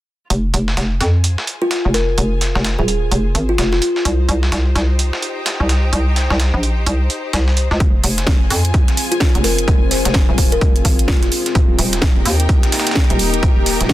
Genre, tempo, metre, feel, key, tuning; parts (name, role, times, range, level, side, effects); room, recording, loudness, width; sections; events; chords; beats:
bass house; 128 BPM; 4/4; swing 61% on 16ths; F minor; A4 = 440 Hz
hollow knocking FM bass; bass; 0.3-13.9 s; Eb1 to F2; -17 LUFS; equal; overdrive, sidechain pumping
dusty soul sampler-style drum kit; drums; 0.3-13.9 s; hi-hat, snare drum; -23 LUFS; right 1 dB; overdrive, high-pass filter on hats, high-pass filter on snare
rich studio string section; texture; 0.3-13.9 s; Eb4 to Ab5; -27 LUFS; left 1 dB; sidechain pumping
kalimba; melody; 1.6-3.9, 9.1-11.3 s; F4 to C5; -22 LUFS; left 1 dB; tape echo
deep dark ambient pad; sustained chords; 8.5-13.9 s; Bb3 to Ab4; -25 LUFS; left 2 dB; chorus, built-in reverb, sidechain pumping
electronic kick drum; drums; 7.8-13.9 s; -14 LUFS; equal; overdrive
house drum kit; drums; 8.0-13.9 s; hi-hat, snare drum; -21 LUFS; right 2 dB; overdrive
little or no reverb; dense, heavily limited modern master; -14 LUFS; side -15 dB against mid
0.3-13.9 A section
fade-in on string section 0.3-13.9
0.3 Fm; 4.1 Cm; 7.8 Fm; 11.6 Eb
| 0.30 0.77 1.24 1.71 | 2.18 2.65 3.12 3.58 | 4.05 4.52 4.99 5.46 | 5.93 6.40 6.87 7.33 | 7.80 8.27 8.74 9.21 | 9.68 10.15 10.62 11.08 | 11.55 12.02 12.49 12.96 | 13.43 13.90